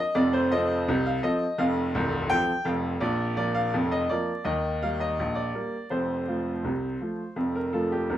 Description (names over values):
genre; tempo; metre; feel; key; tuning
ragtime piano; 83 BPM; 2/4; straight; unclear; A4 = 439 Hz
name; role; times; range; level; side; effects
bright upright piano; solo; 0.0-8.2 s; C1 to G5; -24 LUFS; equal; none
room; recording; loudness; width
wet studio reverb, RT60 0.5 s; heard from further back in the room, vinyl crackle; -24 LUFS; side -12 dB against mid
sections
0.0-8.2 A section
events
none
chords
0.1 F; 3.0 Bb5; 4.5 Eb; 5.9 F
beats
| 0.15 0.87 | 1.59 2.31 | 3.02 3.74 | 4.46 5.18 | 5.91 6.64 | 7.37 8.10